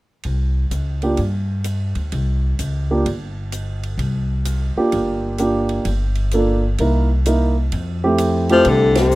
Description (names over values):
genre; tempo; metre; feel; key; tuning
jazz, small-group swing and bop; 128 BPM; 4/4; swing 66% on 8ths; unclear; A4 = 440 Hz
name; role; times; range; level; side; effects
upright bass; bass; 0.2-9.2 s; G1 to G2; -20 LUFS; equal; none
compact cocktail drum kit; drums; 0.2-9.2 s; hi-hat, ride cymbal, snare drum; -32 LUFS; right 1 dB; none
warm upright piano; accompaniment; 1.0-9.1 s; A3 to Bb4; -18 LUFS; right 2 dB; none
warm baritone saxophone; melody; 8.5-9.2 s; C3 to F3; -13 LUFS; left 3 dB; none
room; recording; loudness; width
moderate small room reverb, RT60 0.5 s; rough home demo mix; -17 LUFS; side -18 dB against mid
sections
0.2-7.7 A section; 7.7-9.2 B section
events
band accent 8.9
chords
0.2 C7sus4; 5.9 Gm7; 6.8 C7#9; 7.7 Fmaj7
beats
| 0.25 0.71 1.18 1.65 | 2.12 2.58 3.05 3.52 | 3.99 4.46 4.92 5.39 | 5.86 6.33 6.79 7.26 | 7.73 8.20 8.66 9.13